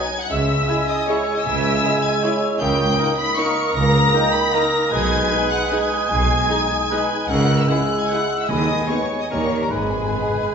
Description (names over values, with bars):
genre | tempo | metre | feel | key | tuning
classical, orchestral ballroom waltz | 153 BPM | 3/4 | uneven beats, rubato | G# minor | A4 = 442 Hz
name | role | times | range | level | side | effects
warm chamber violin section | melody | 0.0-10.5 s | G#5 to C#7 | -26 LUFS | left 2 dB | none
mellow cor anglais | second line | 0.0-10.5 s | A#4 to G#5 | -27 LUFS | right 2 dB | none
mellow hollow concert flute | second line | 0.0-10.5 s | A#5 to E6 | -27 LUFS | equal | none
rich chamber violin section | second line | 0.0-10.5 s | G#4 to C#6 | -26 LUFS | left 4 dB | none
mellow bassoon | accompaniment | 0.0-10.5 s | G3 to A#3 | -24 LUFS | right 3 dB | none
warm French horn section | sustained chords | 0.0-10.3 s | G3 to E4 | -29 LUFS | left 3 dB | none
clear chamber double bass section | bass | 0.3-10.1 s | G#1 to D#2 | -25 LUFS | right 1 dB | none
rich chamber cello section | bass | 0.3-10.1 s | G#2 to D#3 | -26 LUFS | right 1 dB | none
clear studio viola section | accompaniment | 0.7-10.2 s | A#3 to A#4 | -29 LUFS | right 2 dB | none
timpani | percussion | 8.5-10.5 s | G#2 to D#3 | -28 LUFS | left 1 dB | none
room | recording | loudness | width
wet recital hall reverb, RT60 1.5 s | recorded in a church or concert hall, nothing above 7.8 kHz | -17 LUFS | side -6 dB against mid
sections
0.0-10.5 A section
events
timpani fill 9.7-10.5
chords
0.3 C#m; 2.6 D#7/C#; 4.9 G#m/B; 7.3 C#m; 8.5 G#m/D#; 9.3 D#7; 9.7 G#m